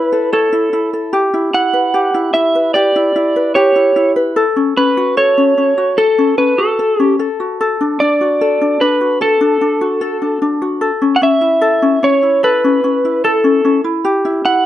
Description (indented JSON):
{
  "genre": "pop",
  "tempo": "74 BPM",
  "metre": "4/4",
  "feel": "straight",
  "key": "D major",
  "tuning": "A4 = 440 Hz",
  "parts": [
    { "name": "electric slide guitar", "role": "melody", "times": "0.0-14.7 s", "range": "A4 to F#5", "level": "-13 LUFS", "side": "right 1 dB", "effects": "plate reverb" },
    { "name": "ukulele", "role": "accompaniment", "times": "0.0-14.7 s", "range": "C#4 to C#5", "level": "-15 LUFS", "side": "left 3 dB", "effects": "none" }
  ],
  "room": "moderate small room reverb, RT60 0.5 s",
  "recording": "nothing above 10.5 kHz",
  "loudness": "-11 LUFS",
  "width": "side -12 dB against mid",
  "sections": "0.0-14.7 A section",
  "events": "none",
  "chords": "0.0 A; 1.1 Em; 4.4 F#m; 7.2 D; 10.8 A; 14.0 Em",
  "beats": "0.33 | 1.13 1.94 2.75 3.55 | 4.36 5.17 5.97 6.78 | 7.59 8.40 9.20 10.01 | 10.82 11.62 12.43 13.24 | 14.05"
}